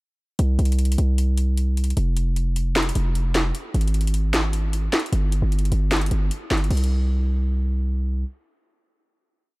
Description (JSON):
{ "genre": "hip hop, trap", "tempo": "152 BPM", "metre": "4/4", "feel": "half-time", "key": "unclear", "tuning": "A4 = 439 Hz", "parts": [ { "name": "distorted 808-style bass", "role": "bass", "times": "0.4-8.2 s", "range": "F1 to C2", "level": "-20 LUFS", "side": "equal", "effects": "distortion" }, { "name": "trap drum kit", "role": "drums", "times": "0.4-6.9 s", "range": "crash cymbal, handclaps, hi-hat, snare drum", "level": "-26 LUFS", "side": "equal", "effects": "none" } ], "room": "little or no reverb", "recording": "dark, warm production", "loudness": "-20 LUFS", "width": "side -23 dB against mid", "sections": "0.4-6.7 breakdown; 6.7-9.6 final note", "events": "none", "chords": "none", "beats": "| 0.39 0.79 1.18 1.57 | 1.97 2.36 2.76 3.15 | 3.55 3.94 4.34 4.73 | 5.13 5.52 5.92 6.31 | 6.71 7.10 7.50 7.89" }